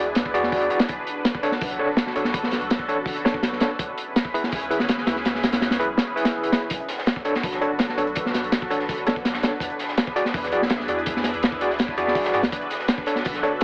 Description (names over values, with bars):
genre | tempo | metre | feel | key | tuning
drum and bass, jungle | 165 BPM | 4/4 | straight | B dorian | A4 = 440 Hz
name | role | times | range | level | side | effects
lush unison pad | sustained chords | 0.0-13.6 s | C#4 to B4 | -28 LUFS | equal | chorus, phaser
overdriven tine electric piano | stabs | 0.0-13.5 s | D4 to D5 | -25 LUFS | equal | medium tremolo, vintage 12-bit sampler grit, dub echo
soft dub sub bass | bass | 0.0-13.6 s | E1 to G#2 | -42 LUFS | equal | none
crunchy breakbeat drum kit | drums | 0.2-13.6 s | hi-hat, kick drum, snare drum | -23 LUFS | equal | none
crunchy breakbeat drum kit | drums | 6.7-13.6 s | hi-hat, snare drum | -33 LUFS | equal | high-pass filter on hats, high-pass filter on snare, high-pass filter on room
room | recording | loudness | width
light reverb, studio ambience | heavily compressed radio sound, AM radio sound | -20 LUFS | side -30 dB against mid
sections
0.0-13.6 A section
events
none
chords
0.0 E7; 0.9 Bm7; 3.8 C#m7; 6.7 Bm7; 9.6 E7; 12.5 Bm7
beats
0.16 0.52 | 0.89 1.25 1.61 1.98 | 2.34 2.71 3.07 3.43 | 3.80 4.16 4.52 4.89 | 5.25 5.62 5.98 6.34 | 6.71 7.07 7.43 7.80 | 8.16 8.52 8.89 9.25 | 9.62 9.98 10.34 10.71 | 11.07 11.43 11.80 12.16 | 12.52 12.89 13.25 13.62